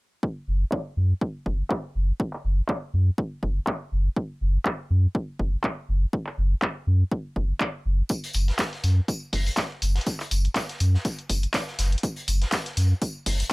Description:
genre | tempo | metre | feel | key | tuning
acid house | 122 BPM | 4/4 | swing 56% on 16ths | unclear | A4 = 440 Hz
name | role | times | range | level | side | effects
electronic kick drum | drums | 0.2-13.4 s | none | -29 LUFS | equal | high-pass filter on kick
saturated sub bass | bass | 0.5-13.4 s | F#1 to F#2 | -21 LUFS | equal | sidechain pumping
punchy analog drum machine | drums | 0.7-13.5 s | handclaps, hi-hat | -28 LUFS | equal | low-pass filter on snare, low-pass filter on hats
raw garage drum kit | drums | 8.1-13.5 s | hi-hat, snare drum, tambourine | -34 LUFS | left 1 dB | sidechain pumping on hats, high-pass filter on hats, high-pass filter on snare, sidechain pumping on perc, high-pass filter on perc, high-pass filter on room
room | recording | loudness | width
little or no reverb | none | -23 LUFS | side -26 dB against mid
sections
0.2-13.5 A section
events
filter sweep on drum 0.2-13.5; filter sweep on sub bass 0.2-13.5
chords
none

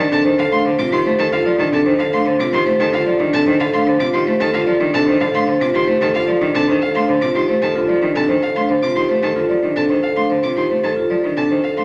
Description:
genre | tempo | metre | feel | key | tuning
classical, minimalist pattern music | 112 BPM | 3/4 | straight | F mixolydian | A4 = 440 Hz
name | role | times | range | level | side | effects
marimba with soft mallets | melody | 0.0-11.8 s | G4 to F5 | -21 LUFS | equal | none
clear cello | accompaniment | 0.0-11.8 s | C3 to A3 | -25 LUFS | equal | none
rich violin | arpeggios | 0.0-11.8 s | F5 to D6 | -26 LUFS | equal | none
vibraphone with soft mallets | arpeggios | 0.0-11.8 s | D4 to A4 | -21 LUFS | equal | none
room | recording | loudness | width
wet recital hall reverb, RT60 1.8 s | none | -17 LUFS | mono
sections
0.0-11.8 A section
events
none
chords
0.0 F13

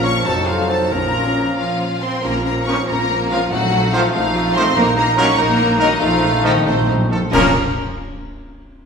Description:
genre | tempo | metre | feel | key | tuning
classical, dramatic, fast romantic movement for symphony orchestra | 87-98 BPM (dotted quarters) | 6/8 | rubato | Bb minor | A4 = 441 Hz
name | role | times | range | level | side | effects
warm symphonic violin section | melody | 0.0-7.6 s | Bb4 to Db6 | -23 LUFS | left 4 dB | none
mellow hollow large flute ensemble | second line | 0.0-7.6 s | A4 to Db6 | -24 LUFS | right 1 dB | none
rich symphonic violin section | second line | 0.0-7.6 s | C4 to Db6 | -25 LUFS | left 3 dB | none
warm clarinet | second line | 0.0-7.5 s | Db4 to Eb4 | -24 LUFS | equal | none
rich symphonic viola section | accompaniment | 0.0-7.6 s | A3 to Gb4 | -27 LUFS | equal | none
warm bassoon | accompaniment | 0.0-7.5 s | F3 to Bb3 | -26 LUFS | right 1 dB | none
clear trombone section | sustained chords | 0.0-7.5 s | Bb2 to Gb3 | -26 LUFS | right 2 dB | none
mellow French horn section | sustained chords | 0.0-7.5 s | A3 to F4 | -28 LUFS | left 4 dB | none
warm trumpet | stabs | 0.0-7.5 s | F4 to Db5 | -26 LUFS | right 2 dB | none
rich symphonic cello section | bass | 0.0-7.6 s | F2 to Db4 | -23 LUFS | right 1 dB | none
rich symphonic double bass section | bass | 0.0-7.6 s | F1 to Bb1 | -24 LUFS | right 2 dB | none
timpani | percussion | 0.9-7.5 s | Bb2 | -26 LUFS | left 1 dB | none
tam-tam, clash cymbals and concert bass drum | percussion | 2.2-3.9, 7.3-8.1 s | none | -31 LUFS | left 1 dB | none
room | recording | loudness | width
wet recital hall reverb, RT60 1.7 s | recorded in a church or concert hall | -14 LUFS | side -6 dB against mid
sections
0.0-2.2 A section; 2.2-7.3 B section; 7.3-8.6 C section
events
band accent 2.2-2.7, 7.3-7.8; timpani fill 6.0-7.3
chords
0.3 F5; 0.9 Bbm; 3.5 F7/Bb; 4.8 Eb5/Bb; 6.0 F7/Bb; 7.3 Bbm

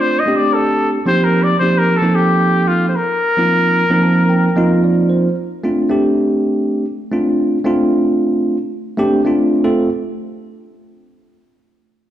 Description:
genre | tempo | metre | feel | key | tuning
jazz | 112 BPM | 4/4 | swing 55% on 16ths | F mixolydian | A4 = 440 Hz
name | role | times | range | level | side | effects
warm trumpet | melody | 0.0-4.8 s | F4 to Eb5 | -16 LUFS | left 2 dB | slapback echo, analog delay
bell-like tine electric piano | accompaniment | 0.0-9.9 s | F3 to A5 | -14 LUFS | right 1 dB | slapback echo
room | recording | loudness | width
moderate plate reverb, RT60 2.4 s | live gig heard through the venue's PA, club reverb | -13 LUFS | side -11 dB against mid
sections
0.0-5.4 A section; 5.4-9.6 B section; 9.6-11.8 C section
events
tine electric piano fill 3.8-5.4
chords
0.0 Dm7; 1.1 F9sus4; 5.4 Dm7; 9.6 F

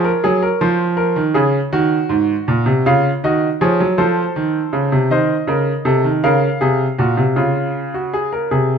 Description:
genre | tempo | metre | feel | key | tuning
classical, baroque-style 3-part fugue for grand piano | 53 BPM (dotted quarters) | 12/8 | straight | Bb minor | A4 = 441 Hz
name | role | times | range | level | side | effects
clear baby grand piano | solo | 0.0-8.8 s | Ab2 to F5 | -14 LUFS | right 1 dB | none
room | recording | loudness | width
light reverb | close, detailed microphones | -14 LUFS | side -6 dB against mid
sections
0.0-8.5 A section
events
none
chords
0.0 Bbm/F; 1.7 Ebm; 4.0 F7 (rootless); 6.2 Bbm

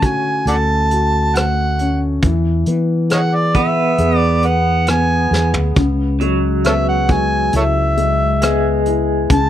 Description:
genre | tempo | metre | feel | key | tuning
acoustic folk-pop ballad | 68 BPM | 4/4 | straight | unclear | A4 = 441 Hz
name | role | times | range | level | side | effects
overdriven harmonica | melody | 0.0-9.5 s | A4 to A5 | -18 LUFS | right 1 dB | none
dark grand piano | accompaniment | 0.0-9.5 s | C#3 to B4 | -21 LUFS | left 4 dB | none
electric guitar through a small old amp | arpeggios | 0.0-9.5 s | F#3 to C#4 | -22 LUFS | right 1 dB | tremolo
mellow fretless electric bass | bass | 0.0-9.5 s | C#2 to E3 | -18 LUFS | equal | none
soft brush drum kit | drums | 0.0-9.5 s | hi-hat, kick drum, rim click, snare drum, toms | -18 LUFS | equal | none
room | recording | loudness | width
light reverb | none | -13 LUFS | side -11 dB against mid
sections
0.0-5.8 A section; 5.8-9.5 B section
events
drum fill 5.3-5.8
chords
0.0 Dmaj7; 2.2 E; 5.8 C#m7

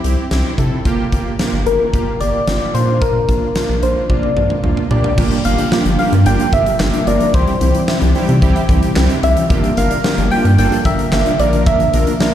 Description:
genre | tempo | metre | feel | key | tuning
synth-pop | 111 BPM | 4/4 | straight | G dorian | A4 = 441 Hz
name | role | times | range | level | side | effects
analog synth brass | accompaniment | 0.0-12.3 s | G3 to Bb4 | -20 LUFS | right 2 dB | chorus
rubbery square bass | bass | 0.0-12.1 s | G1 to C3 | -16 LUFS | equal | none
huge arena drum kit | drums | 0.0-12.3 s | crash cymbal, handclaps, hi-hat, kick drum, snare drum, toms | -19 LUFS | equal | none
soft struck synth lead | melody | 1.7-12.3 s | Bb4 to G5 | -18 LUFS | left 1 dB | chorus, phaser, ping-pong delay
string machine, cellos | sustained chords | 5.2-12.3 s | D3 to G4 | -21 LUFS | equal | ensemble chorus
soft round pluck | arpeggios | 5.2-12.3 s | D3 to E5 | -24 LUFS | left 2 dB | chorus, ping-pong delay
room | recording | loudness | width
moderate recital hall reverb, RT60 1.6 s, small room ambience | played on a big sound system in a bare room, large studio reverb | -12 LUFS | side -11 dB against mid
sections
0.0-5.2 A section; 5.2-12.3 B section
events
drum fill 4.1-5.2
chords
0.0 C; 0.9 Gm7; 2.7 Bb; 5.2 Gm7; 7.3 C; 9.5 Gm7; 11.4 Bb

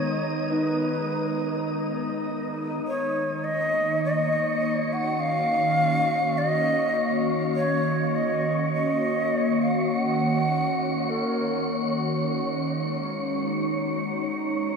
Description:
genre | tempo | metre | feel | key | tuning
ambient | 51 BPM | 4/4 | straight | Eb minor | A4 = 440 Hz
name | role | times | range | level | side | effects
breathy mellow shakuhachi | melody | 0.0-12.0 s | Bb4 to Gb5 | -26 LUFS | equal | shimmer reverb, tape echo
ethereal airy pad | sustained chords | 0.0-14.8 s | Eb3 to Bb5 | -26 LUFS | equal | ensemble chorus, built-in reverb
celesta | arpeggios | 0.0-2.9 s | Eb4 to Bb4 | -34 LUFS | equal | shimmer reverb, tape echo
organ-like drone | drone | 0.0-14.8 s | Eb3 to Eb4 | -38 LUFS | right 2 dB | ensemble chorus, built-in reverb
wind-like tuned noise texture | texture | 0.0-14.8 s | Db5 to Eb6 | -32 LUFS | equal | built-in reverb, shimmer reverb
room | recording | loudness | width
wet cathedral reverb, RT60 7.3 s | none | -23 LUFS | side -5 dB against mid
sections
0.0-2.9 A section; 2.9-14.8 B section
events
filter sweep on ambient pad 2.9-14.8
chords
0.0 Abm; 2.9 Ebm7; 12.3 Ab7(no3)

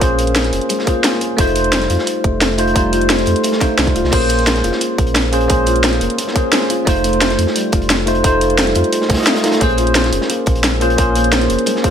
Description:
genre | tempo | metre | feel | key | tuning
liquid drum and bass | 175 BPM | 4/4 | straight | unclear | A4 = 440 Hz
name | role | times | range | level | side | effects
bell-like tine electric piano | accompaniment | 0.0-11.9 s | A3 to Eb5 | -17 LUFS | equal | wide subtle chorus, ping-pong delay
felt-muted upright piano | arpeggios | 0.0-11.9 s | G3 to F4 | -22 LUFS | left 4 dB | tape echo
sub bass with octave | bass | 0.0-11.6 s | Eb1 to F2 | -20 LUFS | equal | none
crunchy breakbeat drum kit | drums | 0.0-11.9 s | hi-hat, snare drum | -24 LUFS | right 1 dB | high-pass filter on hats, studio reverb, high-pass filter on snare, high-pass filter on room
drum and bass drum kit | drums | 0.0-11.9 s | crash cymbal, hi-hat, snare drum | -18 LUFS | equal | studio reverb
electronic kick drum | drums | 0.0-11.9 s | none | -17 LUFS | equal | studio reverb
room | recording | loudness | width
light reverb, small room ambience | none | -12 LUFS | side -8 dB against mid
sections
0.0-11.9 A section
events
none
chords
0.0 Bbm9; 1.4 F7; 4.1 Bbm9; 6.9 F7; 9.6 Bbm9

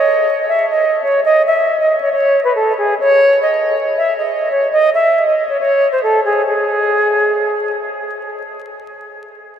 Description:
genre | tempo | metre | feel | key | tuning
hip hop | 138 BPM | 4/4 | half-time | C# minor | A4 = 440 Hz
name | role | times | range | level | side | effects
silver concert flute | melody | 0.0-7.7 s | G#4 to E5 | -13 LUFS | equal | analog delay
room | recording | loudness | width
wet huge ambient reverb, RT60 7.6 s | dreamy mix soaked in reverb, vinyl crackle | -12 LUFS | side -9 dB against mid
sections
0.0-6.5 A section; 6.5-9.6 B section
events
none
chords
none

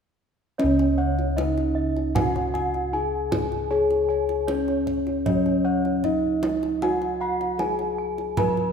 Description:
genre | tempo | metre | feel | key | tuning
Javanese gamelan | 77 BPM | 4/4 | straight | Db slendro | A4 = 440 Hz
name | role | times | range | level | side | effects
gamelan-type bronze metallophone | melody | 0.6-8.7 s | Db4 to Cb5-45c | -25 LUFS | left 1 dB | none
gamelan-type bossed gongs | arpeggios | 0.6-8.7 s | Db5 to Cb6-45c | -31 LUFS | left 5 dB | none
gamelan-type bronze metallophone | arpeggios | 0.6-8.7 s | Db5 to Cb6-45c | -31 LUFS | right 6 dB | none
gamelan-type bossed gongs | bass | 0.6-8.7 s | Db2 to Ab4+25c | -26 LUFS | equal | none
kendang | percussion | 0.6-8.7 s | none | -31 LUFS | right 2 dB | none
room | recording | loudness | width
light reverb | minimal, uncompressed stereo recording | -21 LUFS | side -6 dB against mid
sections
0.6-8.7 A section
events
none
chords
none

